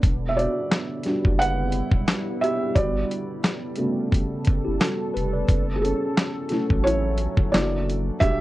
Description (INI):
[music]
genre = lo-fi hip hop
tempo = 88 BPM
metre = 4/4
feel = swing 56% on 16ths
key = unclear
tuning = A4 = 440 Hz
[part]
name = felt-muted upright piano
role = accompaniment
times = 0.0-8.4 s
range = C#3 to F#5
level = -25 LUFS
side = right 1 dB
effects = cassette tape
[part]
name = deep dark ambient pad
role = sustained chords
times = 0.0-8.4 s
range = C#3 to A4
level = -30 LUFS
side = right 1 dB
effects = chorus, built-in reverb
[part]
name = saturated sub bass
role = bass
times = 0.0-8.4 s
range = E1 to A1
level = -27 LUFS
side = equal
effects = none
[part]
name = dusty soul sampler-style drum kit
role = drums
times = 0.0-8.4 s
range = handclaps, hi-hat, kick drum, snare drum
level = -22 LUFS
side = equal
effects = overdrive
[part]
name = mellow tine electric piano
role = second line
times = 4.6-5.7 s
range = E4 to D5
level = -30 LUFS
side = equal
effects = medium stereo tremolo, analog delay
[sound]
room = light reverb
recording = worn, warbling old tape, cassette tape, warbly pitch drift, lossy compression artefacts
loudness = -21 LUFS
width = side -17 dB against mid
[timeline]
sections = 0.0-8.4 A section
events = felt piano solo 0.0-8.4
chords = 0.0 Em9; 2.8 Gmaj9#11; 5.5 F#m7; 7.5 F#7alt